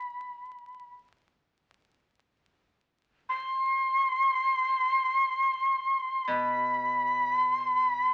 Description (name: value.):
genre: japanese traditional, Japanese chamber music.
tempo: free time.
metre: none.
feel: none.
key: unclear.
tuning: A4 = 441 Hz.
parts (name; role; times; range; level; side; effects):
reedy shakuhachi; melody; 0.0-8.1 s; B5 to C6; -28 LUFS; equal; none.
koto; accompaniment; 6.3-8.1 s; B2; -40 LUFS; equal; none.
room: wet studio reverb, RT60 0.5 s.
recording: very old 78 rpm record, vinyl crackle.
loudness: -27 LUFS.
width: mono.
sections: 0.0-8.1 A section.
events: none.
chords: none.